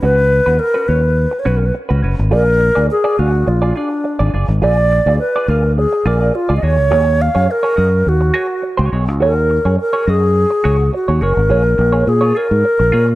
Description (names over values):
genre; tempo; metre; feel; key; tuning
disco; 105 BPM; 4/4; straight; unclear; A4 = 441 Hz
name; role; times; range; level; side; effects
wooden-headed alto flute; melody; 0.0-13.2 s; D4 to E#5; -15 LUFS; equal; none
clean electric guitar; accompaniment; 0.0-13.1 s; C#4 to E#5; -22 LUFS; right 3 dB; wah, spring reverb
fingered electric bass; bass; 0.0-13.2 s; F#1 to A#2; -14 LUFS; equal; none
room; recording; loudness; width
light reverb, small room ambience; dark, warm production; -12 LUFS; side -17 dB against mid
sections
0.0-11.5 A section; 11.5-13.2 B section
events
none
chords
0.0 C#7sus4; 2.3 A#7; 6.6 D#m7; 11.5 A#m7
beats
| 0.02 0.60 1.17 1.75 | 2.32 2.90 3.47 4.04 | 4.62 5.19 5.77 6.34 | 6.92 7.49 8.06 8.64 | 9.21 9.78 10.36 10.93 | 11.50 12.07 12.65